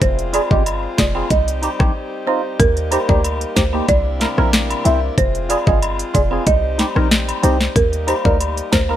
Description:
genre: dancehall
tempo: 93 BPM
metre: 4/4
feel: straight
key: unclear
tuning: A4 = 441 Hz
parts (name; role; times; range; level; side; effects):
- folk marimba with medium mallets; melody; 0.0-8.9 s; Bb4 to E5; -21 LUFS; right 2 dB; ping-pong delay
- hand-pumped harmonium; sustained chords; 0.0-9.0 s; C3 to F4; -27 LUFS; left 2 dB; sidechain pumping
- short 808-style bass; bass; 0.0-9.0 s; F1 to Eb2; -19 LUFS; equal; none
- island pop drum kit; drums; 0.0-8.9 s; hi-hat, kick drum, rim click, snare drum; -18 LUFS; equal; overdrive
- percussive organ stab; accompaniment; 0.3-9.0 s; Bb3 to C5; -24 LUFS; right 1 dB; chorus
- cabasa and woodblock; percussion; 0.3-9.0 s; none; -28 LUFS; left 4 dB; none
room: light reverb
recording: none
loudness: -15 LUFS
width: side -11 dB against mid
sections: 0.0-9.0 A section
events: break 2.0-2.6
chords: 0.0 Fm; 1.3 Cm; 2.6 Eb; 3.9 C7; 5.2 Fm; 6.5 Cm; 7.8 Eb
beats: | 0.02 0.66 1.31 1.95 | 2.60 3.24 3.89 4.53 | 5.18 5.82 6.47 7.11 | 7.76 8.40

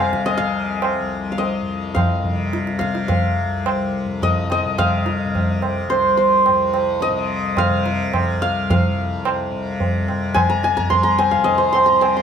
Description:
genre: indian classical, Hindustani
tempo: 107 BPM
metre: 5/4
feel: straight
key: C raga malkauns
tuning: A4 = 440 Hz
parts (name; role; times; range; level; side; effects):
- santur; melody; 0.0-12.2 s; C5 to C6; -19 LUFS; equal; none
- tanpura; drone; 0.0-12.2 s; C2 to C3; -24 LUFS; left 3 dB; none
- tabla; percussion; 0.1-12.2 s; none; -22 LUFS; right 2 dB; none
room: light reverb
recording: none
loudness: -17 LUFS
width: side -7 dB against mid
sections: 0.0-12.2 A section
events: none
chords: none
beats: | 0.27 0.83 1.40 1.96 2.52 | 3.09 3.65 4.21 4.78 5.34 | 5.90 6.46 7.02 7.57 8.13 | 8.69 9.24 9.80 10.36 10.91 | 11.46 12.01

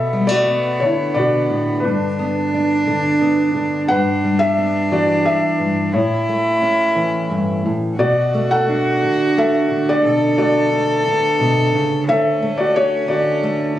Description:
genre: acoustic folk-pop ballad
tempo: 88 BPM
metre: 3/4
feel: straight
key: unclear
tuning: A4 = 445 Hz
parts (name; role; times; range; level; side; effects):
- felt-muted upright piano; melody; 0.0-13.8 s; D4 to F#5; -19 LUFS; left 2 dB; none
- clear cello; second line; 0.0-13.8 s; B3 to A4; -20 LUFS; equal; none
- fingerpicked steel-string acoustic guitar; accompaniment; 0.0-13.8 s; D2 to D4; -20 LUFS; right 1 dB; none
room: light reverb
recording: recorded on a phone in the room, club reverb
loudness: -15 LUFS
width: side -12 dB against mid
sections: 0.0-13.8 A section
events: none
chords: 0.0 Bm7; 1.8 G; 3.9 Em/G; 5.9 A; 8.0 Bm7; 10.1 Gadd9/B (rootless); 12.1 Dmaj7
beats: 0.47 1.16 | 1.84 2.53 3.21 | 3.90 4.57 5.25 | 5.93 6.62 7.30 | 7.99 8.68 9.37 | 10.05 10.73 11.41 | 12.09 12.77 13.44

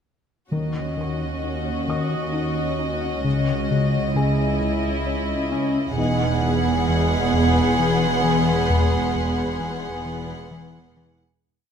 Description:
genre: cinematic, suspense film score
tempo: 66 BPM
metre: 3/4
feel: straight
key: unclear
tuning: A4 = 438 Hz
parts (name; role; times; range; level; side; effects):
- rich chamber violin section; melody; 0.5-11.2 s; Eb5 to F#5; -29 LUFS; left 2 dB; none
- warm symphonic violin section; second line; 0.5-11.2 s; Fb4 to G#4; -28 LUFS; left 1 dB; none
- dark symphonic viola section; accompaniment; 0.5-11.2 s; B3 to Db4; -28 LUFS; right 1 dB; none
- smooth synth bass; riff; 0.5-11.2 s; E2 to Eb4; -25 LUFS; left 3 dB; none
- dark symphonic double bass section; bass; 0.5-11.2 s; E1 to Eb2; -28 LUFS; right 4 dB; none
- warm symphonic cello section; bass; 0.5-11.2 s; Db2 to E2; -28 LUFS; right 4 dB; none
- timpani; percussion; 0.5-1.8 s; Eb3; -33 LUFS; left 1 dB; none
- felt-muted upright piano; texture; 1.0-11.5 s; Eb4 to Eb6; -34 LUFS; left 2 dB; none
- warm studio violin section; texture; 6.0-10.9 s; B5 to C6; -36 LUFS; left 1 dB; none
room: wet scoring stage reverb, RT60 1.6 s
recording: none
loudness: -19 LUFS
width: side -7 dB against mid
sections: 0.5-11.4 A section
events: fade-out 8.7-11.4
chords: 0.5 Ebm7; 3.3 Dbmadd9; 6.0 Eadd9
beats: | 0.52 1.43 2.34 | 3.25 4.16 5.07 | 5.98 6.89 7.80 | 8.71 9.61 10.52

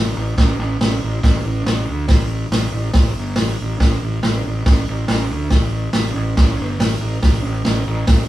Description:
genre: garage rock duo or trio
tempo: 140 BPM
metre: 4/4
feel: straight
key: unclear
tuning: A4 = 440 Hz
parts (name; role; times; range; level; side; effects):
- fuzz fingered electric bass; bass; 0.0-8.3 s; G1 to D2; -20 LUFS; equal; overdrive
- vintage drum kit; drums; 0.4-8.2 s; hi-hat, kick drum, snare drum; -17 LUFS; equal; none
room: light reverb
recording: band playing live in one room, small room ambience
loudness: -16 LUFS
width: side -15 dB against mid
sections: 0.0-8.3 A section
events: none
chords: none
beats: 0.38 0.81 | 1.24 1.67 2.10 2.52 | 2.95 3.38 3.81 4.24 | 4.67 5.09 5.52 5.95 | 6.38 6.80 7.23 7.66 | 8.09

